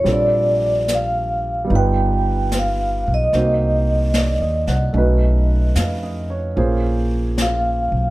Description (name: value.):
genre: jazz ballad.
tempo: 74 BPM.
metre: 4/4.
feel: swing 68% on 8ths.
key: unclear.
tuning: A4 = 439 Hz.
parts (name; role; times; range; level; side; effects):
vibraphone with soft mallets; melody; 0.0-8.1 s; D5 to G5; -20 LUFS; equal; none.
warm grand piano; accompaniment; 0.0-8.1 s; G3 to Gb5; -23 LUFS; right 3 dB; none.
upright bass; bass; 0.1-8.1 s; G1 to F2; -19 LUFS; equal; none.
jazz brush drum kit; drums; 0.1-8.1 s; brushed snare drum, hi-hat, snare drum; -26 LUFS; left 2 dB; none.
room: light reverb.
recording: none.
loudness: -16 LUFS.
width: side -18 dB against mid.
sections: 0.0-8.1 A section.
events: none.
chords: 0.1 Bbmaj13; 1.7 G7b13; 3.3 Cm7b5; 4.9 B9; 6.6 Bbm9.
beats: | 0.05 0.88 1.69 2.51 | 3.33 4.13 4.94 5.75 | 6.57 7.37.